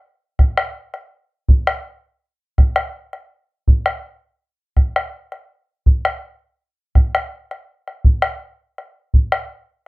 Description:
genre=andean folk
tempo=82 BPM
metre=3/4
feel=straight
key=none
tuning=none
part: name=bombo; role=percussion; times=0.4-9.5 s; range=none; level=-14 LUFS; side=equal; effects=none
room=moderate studio reverb, RT60 0.5 s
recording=rough home demo mix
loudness=-16 LUFS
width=side -22 dB against mid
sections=0.0-9.1 A section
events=none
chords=none

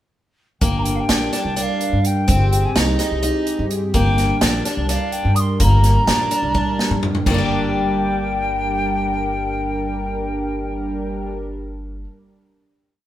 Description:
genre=progressive instrumental, band music in an uneven meter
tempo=253 BPM (eighths)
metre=7/8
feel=straight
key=G phrygian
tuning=A4 = 439 Hz
part: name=wooden flute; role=melody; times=0.6-11.3 s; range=Eb5 to Eb6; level=-24 LUFS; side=left 1 dB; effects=none
part: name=chorused pulse-width pad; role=accompaniment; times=0.6-11.3 s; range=G3 to Bb4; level=-25 LUFS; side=right 2 dB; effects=none
part: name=picked twelve-string acoustic guitar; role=arpeggios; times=0.6-12.1 s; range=G3 to G4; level=-25 LUFS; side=left 2 dB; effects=none
part: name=upright bass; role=bass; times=0.6-12.0 s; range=G1 to G2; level=-21 LUFS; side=equal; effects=none
part: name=swinging big-band drum kit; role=drums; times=0.6-7.4 s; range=china cymbal, hi-hat, kick drum, snare drum, toms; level=-21 LUFS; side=right 1 dB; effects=none
room=moderate stone room reverb, RT60 0.9 s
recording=band playing live in one room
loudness=-17 LUFS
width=side -12 dB against mid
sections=0.6-7.3 A section; 7.3-10.6 final chord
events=drum fill 6.5-7.3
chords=0.6 Gm; 2.3 Abmaj7/G; 3.9 Gm

